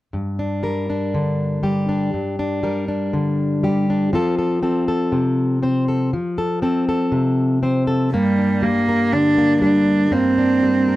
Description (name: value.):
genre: folk.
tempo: 120 BPM.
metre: 4/4.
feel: straight.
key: G minor.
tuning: A4 = 440 Hz.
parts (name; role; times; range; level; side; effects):
fingerpicked plugged-in steel-string acoustic guitar; accompaniment; 0.1-11.0 s; G2 to C5; -18 LUFS; left 1 dB; none.
warm cello; melody; 8.1-11.0 s; G3 to D4; -16 LUFS; right 2 dB; none.
room: little or no reverb.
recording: dry, close 1970s-style studio recording.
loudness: -17 LUFS.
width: side -16 dB against mid.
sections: 0.1-8.1 A section; 8.1-11.0 B section.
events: none.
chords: 0.1 Gm; 4.1 F; 8.1 Gm.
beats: | 0.14 0.63 1.13 1.63 | 2.13 2.63 3.13 3.63 | 4.13 4.63 5.13 5.63 | 6.13 6.63 7.13 7.63 | 8.13 8.63 9.13 9.63 | 10.13 10.63.